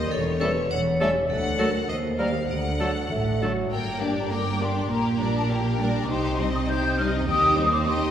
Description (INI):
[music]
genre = cinematic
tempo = 101 BPM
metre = 2/4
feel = straight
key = G minor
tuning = A4 = 439 Hz
[part]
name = rich studio violin section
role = melody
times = 0.0-8.1 s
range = Bb4 to G5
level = -33 LUFS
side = left 4 dB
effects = none
[part]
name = vibraphone with hard mallets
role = melody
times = 0.0-3.1 s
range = A4 to D5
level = -28 LUFS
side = equal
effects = none
[part]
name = rich studio double bass section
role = bass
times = 0.1-8.1 s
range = E1 to Eb2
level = -31 LUFS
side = right 1 dB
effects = none
[part]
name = warm studio cello section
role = bass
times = 0.1-8.1 s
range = D2 to C3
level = -28 LUFS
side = right 1 dB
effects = none
[part]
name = clear oboe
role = second line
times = 0.4-3.5 s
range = A4 to Bb4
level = -34 LUFS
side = equal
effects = none
[part]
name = clear studio violin section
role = second line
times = 0.4-8.1 s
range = G3 to Bb4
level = -33 LUFS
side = left 3 dB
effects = none
[part]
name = large flute ensemble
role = second line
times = 0.4-8.1 s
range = D5 to G6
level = -27 LUFS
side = left 1 dB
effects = none
[part]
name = mellow bassoon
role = accompaniment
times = 0.4-3.7 s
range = F#3 to A3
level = -31 LUFS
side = right 1 dB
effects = none
[part]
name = rich studio viola section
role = accompaniment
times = 0.4-8.1 s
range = D3 to Eb4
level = -31 LUFS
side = right 1 dB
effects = none
[part]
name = mellow French horn section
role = sustained chords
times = 4.0-7.7 s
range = G3 to Eb4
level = -32 LUFS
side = left 3 dB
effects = none
[sound]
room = wet concert hall reverb, RT60 2.2 s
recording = recorded in a church or concert hall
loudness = -22 LUFS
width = side -9 dB against mid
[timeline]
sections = 0.0-3.7 A section; 3.7-8.1 B section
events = none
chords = 0.1 A7/E; 1.3 D; 1.9 Eb; 2.5 D; 3.7 Gm; 4.9 Gm/Bb; 6.1 Cm; 7.3 Cm/Eb